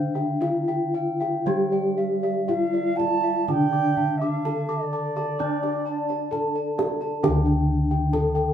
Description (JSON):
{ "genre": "Javanese gamelan", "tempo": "56-67 BPM", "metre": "4/4", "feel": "straight", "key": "unclear", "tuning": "A4 = 440 Hz", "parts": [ { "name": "gamelan-type bronze metallophone", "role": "melody", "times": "0.0-8.5 s", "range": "D4 to D5", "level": "-26 LUFS", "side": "left 2 dB", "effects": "none" }, { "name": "gamelan-type bronze metallophone", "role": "accompaniment", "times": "0.0-8.5 s", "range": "D3 to D4", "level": "-28 LUFS", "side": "right 2 dB", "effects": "none" }, { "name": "gamelan-type bossed gongs", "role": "arpeggios", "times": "0.0-8.5 s", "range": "D5 to D6", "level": "-32 LUFS", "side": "left 5 dB", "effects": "none" }, { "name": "gamelan-type bronze metallophone", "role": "arpeggios", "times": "0.0-7.2 s", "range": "C5-25c to D6", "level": "-33 LUFS", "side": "right 5 dB", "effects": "none" }, { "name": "gamelan-type bossed gongs", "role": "bass", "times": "0.0-8.5 s", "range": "D2 to F4-45c", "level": "-31 LUFS", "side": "left 1 dB", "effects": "none" }, { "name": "kendang", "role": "percussion", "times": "0.2-8.3 s", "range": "none", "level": "-32 LUFS", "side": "right 4 dB", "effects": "none" }, { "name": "bright reedy low xiao", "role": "second line", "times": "2.5-6.6 s", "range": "D5 to A5", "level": "-28 LUFS", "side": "right 6 dB", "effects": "none" } ], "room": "moderate studio reverb, RT60 0.5 s", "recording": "band playing live in one room", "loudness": "-21 LUFS", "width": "side -9 dB against mid", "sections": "0.0-7.2 A section; 7.2-8.5 B section", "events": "none", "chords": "none" }